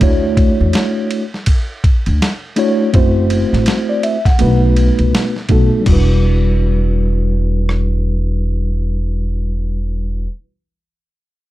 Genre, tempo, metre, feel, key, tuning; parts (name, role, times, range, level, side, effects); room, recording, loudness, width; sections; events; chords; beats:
hip hop, jazz-hop; 82 BPM; 4/4; swing 61% on 16ths; E minor; A4 = 438 Hz
mellow tine electric piano; accompaniment; 0.0-10.3 s; G3 to F#5; -17 LUFS; equal; medium stereo tremolo, low-pass filter
upright bass; bass; 0.0-10.2 s; E1 to E2; -15 LUFS; equal
dusty soul sampler-style drum kit; drums; 0.0-7.9 s; crash cymbal, hi-hat, kick drum, ride cymbal, rim click, snare drum; -16 LUFS; equal
light reverb; dark, warm production; -13 LUFS; side -16 dB against mid
0.0-5.9 A section; 5.9-8.8 B section
filter sweep on tine electric piano 0.0-5.9
0.0 Dmaj9; 2.9 F#m7b5; 4.4 B7; 5.9 Em9
| 0.01 0.74 1.47 2.20 | 2.94 3.67 4.40 5.13 | 5.86 6.59 7.33 8.06